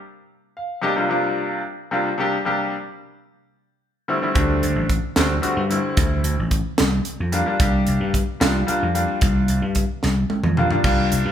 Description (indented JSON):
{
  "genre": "electric jazz fusion",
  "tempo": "74 BPM (dotted quarters)",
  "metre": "6/8",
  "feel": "straight",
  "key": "unclear",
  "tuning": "A4 = 439 Hz",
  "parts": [
    { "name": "bright concert grand piano", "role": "accompaniment", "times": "0.6-11.3 s", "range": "C3 to F5", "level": "-22 LUFS", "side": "left 1 dB", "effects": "none" },
    { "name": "vintage slap bass", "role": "bass", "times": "4.4-11.3 s", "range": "A1 to G2", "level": "-22 LUFS", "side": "equal", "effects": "none" },
    { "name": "crisp fusion drum kit", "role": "drums", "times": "4.4-11.2 s", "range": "crash cymbal, hi-hat, kick drum, snare drum, toms", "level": "-22 LUFS", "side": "right 1 dB", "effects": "none" }
  ],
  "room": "moderate large studio reverb, RT60 1.2 s",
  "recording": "band playing live in one room",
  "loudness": "-18 LUFS",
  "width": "side -9 dB against mid",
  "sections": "0.0-10.8 A section",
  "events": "grand piano fill 0.3-1.1; drum fill 10.0-10.8",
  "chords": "0.0 C9sus4; 2.7 D9sus4; 6.8 C9sus4",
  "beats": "0.30 | 1.11 1.92 | 2.73 3.55 | 4.36 5.17 | 5.98 6.79 | 7.60 8.41 | 9.22 10.04 | 10.85"
}